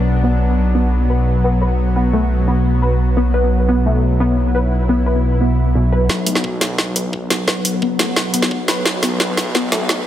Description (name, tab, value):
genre	half-time drum and bass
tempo	174 BPM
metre	4/4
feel	half-time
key	unclear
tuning	A4 = 438 Hz
part	bowed-like drone	sustained chords	0.0-10.1 s	F#3 to F#4	-22 LUFS	left 1 dB	built-in reverb, sidechain pumping
part	dark detuned saw bass	bass	0.0-10.1 s	F#1 to B1	-18 LUFS	equal	high-pass filter
part	warbly dusty pluck	arpeggios	0.2-10.0 s	B2 to B4	-21 LUFS	left 1 dB	ensemble chorus, tape echo
part	drum and bass drum kit	drums	6.1-10.0 s	hi-hat, snare drum	-18 LUFS	equal	overdrive, studio reverb
part	electronic kick drum	drums	6.1-10.0 s	none	-30 LUFS	equal	none
room	light reverb, digital ambience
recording	high-pass filter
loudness	-14 LUFS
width	side -11 dB against mid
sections	0.0-6.1 A section; 6.1-10.1 B section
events	filter sweep on synth pluck 0.0-6.1, 6.1-10.1; build-up 6.1-10.1; drum fill 6.1-10.1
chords	0.0 B5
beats	0.24 | 0.58 0.93 1.27 1.62 | 1.96 2.31 2.65 3.00 | 3.34 3.69 4.03 4.37 | 4.72 5.06 5.41 5.75 | 6.10 6.44 6.79 7.13 | 7.48 7.82 8.17 8.51 | 8.86 9.20 9.55 9.89